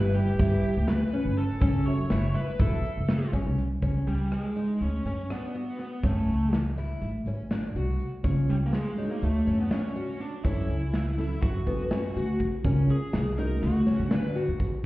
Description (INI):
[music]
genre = progressive instrumental, band music in an uneven meter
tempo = 245 BPM (eighths)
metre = 9/8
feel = straight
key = F# phrygian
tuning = A4 = 440 Hz
[part]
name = high-gain lead guitar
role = melody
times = 0.0-14.3 s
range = G3 to C#5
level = -32 LUFS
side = equal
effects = distortion, plate reverb
[part]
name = tine electric piano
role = accompaniment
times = 0.0-2.8, 8.2-14.9 s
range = C#3 to E5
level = -32 LUFS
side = right 1 dB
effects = medium stereo tremolo
[part]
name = picked twelve-string acoustic guitar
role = arpeggios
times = 0.0-14.7 s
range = B3 to F#4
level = -34 LUFS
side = left 2 dB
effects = none
[part]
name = upright bass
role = bass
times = 0.0-14.7 s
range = E1 to D3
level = -27 LUFS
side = equal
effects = none
[part]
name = big rock drum kit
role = drums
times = 0.1-14.7 s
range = hi-hat, kick drum, rim click, snare drum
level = -30 LUFS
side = equal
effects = none
[part]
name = egg shaker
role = percussion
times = 0.2-12.0 s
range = none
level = barely audible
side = none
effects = none
[sound]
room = moderate studio reverb, RT60 0.6 s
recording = heard muffled through a wall, stone room reverb, EQ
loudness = -24 LUFS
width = side -18 dB against mid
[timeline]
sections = 0.0-3.8 A section; 3.8-12.6 B section; 12.6-14.9 C section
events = lead electric guitar solo 12.6-14.9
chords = 0.0 G6; 1.6 F#m7; 3.8 C#5; 4.8 Bmadd9/D; 6.0 F#m7; 7.0 Asus4; 8.2 C#6; 9.2 Dmaj7; 10.4 F#m7; 12.6 C#6; 13.6 Dmaj9